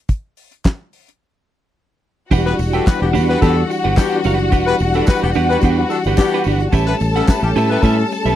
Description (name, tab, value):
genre	disco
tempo	109 BPM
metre	4/4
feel	straight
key	E dorian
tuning	A4 = 441 Hz
part	damped 70s drum kit	drums	0.1-8.4 s	crash cymbal, handclaps, hi-hat, kick drum, snare drum	-14 LUFS	equal	none
part	clear studio string section	second line	2.3-8.4 s	F#4 to A5	-22 LUFS	left 3 dB	none
part	clean electric guitar	accompaniment	2.3-8.4 s	C#4 to G5	-21 LUFS	right 10 dB	none
part	percussive tonewheel organ	sustained chords	2.3-8.4 s	E3 to F#4	-22 LUFS	left 1 dB	chorus vibrato, fast rotary speaker
part	fingered electric bass	bass	2.3-8.3 s	E1 to A2	-18 LUFS	equal	none
part	tambourine	percussion	2.3-8.4 s	none	-39 LUFS	right 17 dB	none
part	warm horn section	stabs	2.5-8.0 s	B3 to B4	-20 LUFS	left 6 dB	none
room	little or no reverb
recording	dry, close 1970s-style studio recording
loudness	-14 LUFS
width	side -12 dB against mid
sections	0.0-2.3 A section; 2.3-8.4 B section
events	break 1.2-2.3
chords	0.0 N.C.; 2.3 Em9; 6.7 A9